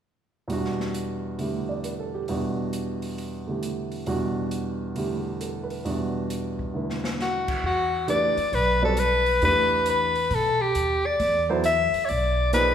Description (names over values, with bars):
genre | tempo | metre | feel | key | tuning
modal jazz | 134 BPM | 4/4 | swing 66% on 8ths | E minor | A4 = 440 Hz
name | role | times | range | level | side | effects
warm grand piano | accompaniment | 0.5-12.7 s | E2 to D5 | -28 LUFS | right 2 dB | none
open jazz drum kit | drums | 0.5-12.7 s | crash cymbal, hi-hat, kick drum, snare drum | -37 LUFS | equal | none
breathy soprano saxophone | melody | 7.2-12.7 s | F#4 to E5 | -21 LUFS | left 2 dB | none
upright bass | bass | 7.6-12.7 s | B1 to B2 | -28 LUFS | equal | none
room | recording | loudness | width
wet recital hall reverb, RT60 1.4 s | recorded in a church or concert hall | -23 LUFS | side -9 dB against mid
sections
0.5-7.6 A section; 7.6-12.7 B section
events
drum fill 6.7-7.2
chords
0.5 Em9; 7.6 Em7